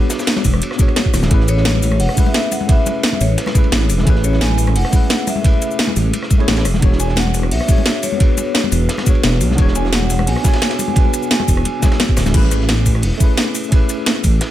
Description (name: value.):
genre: liquid drum and bass.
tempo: 174 BPM.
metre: 4/4.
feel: straight.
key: A major.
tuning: A4 = 440 Hz.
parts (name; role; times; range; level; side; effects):
tine electric piano; accompaniment; 0.0-14.5 s; A3 to C#5; -22 LUFS; equal; overdrive, fast stereo tremolo.
congas; percussion; 0.0-12.3 s; none; -25 LUFS; left 6 dB; none.
crunchy breakbeat drum kit; drums; 0.1-14.5 s; hi-hat, ride cymbal, snare drum; -28 LUFS; right 1 dB; high-pass filter on cymbals, high-pass filter on hats, high-pass filter on snare, high-pass filter on room.
drum and bass drum kit; drums; 0.1-14.5 s; crash cymbal, hi-hat, rim click, shaker, snare drum; -19 LUFS; equal; none.
dark detuned saw bass; bass; 0.4-14.4 s; D1 to B1; -16 LUFS; equal; none.
electronic kick drum; drums; 0.4-14.3 s; none; -14 LUFS; equal; none.
vibraphone with medium mallets; melody; 1.5-12.0 s; B4 to G#5; -25 LUFS; equal; digital delay.
room: small room ambience.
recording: none.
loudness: -13 LUFS.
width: side -13 dB against mid.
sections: 0.0-12.3 A section; 12.3-14.5 A section.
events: drop 0.0-12.3, 12.3-14.5.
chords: 0.0 E13 (rootless); 1.3 Amaj9; 6.7 E13; 12.3 Amaj9.